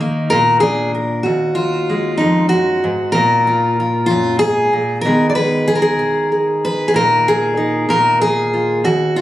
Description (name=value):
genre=folk, solo fingerstyle acoustic guitar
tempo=63 BPM (dotted quarters)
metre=6/8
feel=straight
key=Eb harmonic minor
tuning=A4 = 440 Hz
part: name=fingerpicked steel-string acoustic guitar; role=solo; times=0.0-9.2 s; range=Eb2 to D5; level=-13 LUFS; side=equal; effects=none
room=moderate large studio reverb, RT60 1.5 s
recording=recorded on a phone in the room, club reverb, compression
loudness=-13 LUFS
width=side -14 dB against mid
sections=0.0-1.3 A section; 1.3-9.2 B section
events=none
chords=0.3 Bb; 1.3 Ebmadd9; 3.1 Bb5; 5.0 Abm/Cb; 6.9 Bbsus4; 7.9 Bb5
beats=0.30 | 1.25 2.20 | 3.15 4.09 | 5.04 5.99 | 6.94 7.89 | 8.84